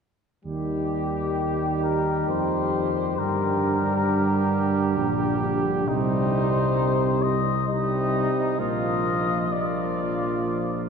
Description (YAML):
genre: classical, brass quintet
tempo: 66 BPM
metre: 3/4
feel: straight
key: Eb major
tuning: A4 = 439 Hz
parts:
  - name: clear French horn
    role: accompaniment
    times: 0.4-10.9 s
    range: G3 to Bb3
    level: -30 LUFS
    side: left 2 dB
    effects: none
  - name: mellow cornet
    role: melody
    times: 0.5-10.9 s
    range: G4 to Eb5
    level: -28 LUFS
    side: left 4 dB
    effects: none
  - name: mellow trumpet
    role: second line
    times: 0.5-10.9 s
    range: Eb4 to G4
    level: -30 LUFS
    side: right 4 dB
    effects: none
  - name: clear trombone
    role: accompaniment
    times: 0.5-10.9 s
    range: C3 to F3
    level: -30 LUFS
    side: right 1 dB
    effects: none
  - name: mellow tuba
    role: bass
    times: 0.5-10.9 s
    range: Bb1 to G2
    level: -26 LUFS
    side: right 2 dB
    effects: none
room: wet cathedral reverb, RT60 4.9 s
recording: none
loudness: -22 LUFS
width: side -6 dB against mid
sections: 0.5-10.9 A section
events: none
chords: 0.5 Eb; 3.2 Gm; 5.9 Cm; 8.6 Bb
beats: | 0.45 1.38 2.29 | 3.19 4.09 4.99 | 5.88 6.78 7.68 | 8.59 9.52 10.44